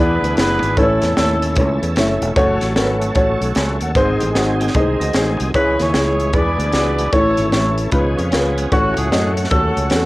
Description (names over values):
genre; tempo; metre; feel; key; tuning
uptempo gospel; 151 BPM; 4/4; swing 64% on 8ths; unclear; A4 = 441 Hz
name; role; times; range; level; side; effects
clear horn section; melody; 0.0-1.9, 5.5-10.1 s; A3 to D5; -20 LUFS; equal; plate reverb
dark grand piano; accompaniment; 0.0-10.1 s; G#2 to G#5; -18 LUFS; left 1 dB; plate reverb
bright tonewheel organ; sustained chords; 0.0-10.1 s; D#3 to A4; -25 LUFS; right 1 dB; overdrive, chorus vibrato, slow rotary speaker, plate reverb
fingered electric bass; bass; 0.0-10.1 s; E1 to F#2; -21 LUFS; equal; none
crisp fusion drum kit; drums; 0.2-10.0 s; hi-hat, kick drum, snare drum; -21 LUFS; equal; none
clean electric guitar; second line; 4.6-5.5, 7.9-8.7 s; B3 to D#5; -28 LUFS; right 2 dB; wide subtle chorus, plate reverb
room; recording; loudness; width
light reverb; home recording on cassette; -14 LUFS; side -19 dB against mid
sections
0.0-10.1 A section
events
none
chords
0.0 E7; 0.8 A; 2.4 F#m; 4.0 G#; 5.5 C#m; 6.3 E7; 7.1 A; 7.9 C#7; 8.7 F#m/A